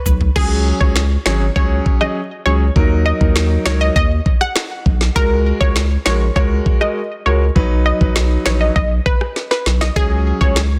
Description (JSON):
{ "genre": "dancehall", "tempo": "100 BPM", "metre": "4/4", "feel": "straight", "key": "unclear", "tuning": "A4 = 440 Hz", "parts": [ { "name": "analog pluck", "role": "melody", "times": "0.0-10.5 s", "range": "G#4 to F#5", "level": "-24 LUFS", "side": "equal", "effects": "chorus, delay" }, { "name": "saturated sub bass", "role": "bass", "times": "0.1-10.8 s", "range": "G#1 to D#2", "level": "-19 LUFS", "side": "equal", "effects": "none" }, { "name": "island pop drum kit", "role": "drums", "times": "0.1-10.7 s", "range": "crash cymbal, finger snaps, kick drum, rim click, snare drum, toms", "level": "-19 LUFS", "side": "equal", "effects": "vintage 12-bit sampler grit, soft clipping on snare" }, { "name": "clear grand piano", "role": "accompaniment", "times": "0.4-10.6 s", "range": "F#3 to B4", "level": "-24 LUFS", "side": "equal", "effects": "none" } ], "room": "light reverb, digital ambience", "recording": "dense, heavily limited modern master", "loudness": "-16 LUFS", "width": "mono", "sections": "0.4-10.8 A section", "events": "drum fill 0.0-0.4, 9.4-10.0", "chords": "0.4 C#sus4; 2.8 D#m; 5.2 F#add9; 7.6 B; 10.0 C#sus4", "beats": "| 0.36 0.96 1.56 2.16 | 2.76 3.36 3.96 4.56 | 5.16 5.76 6.36 6.96 | 7.56 8.16 8.76 9.36 | 9.96 10.56" }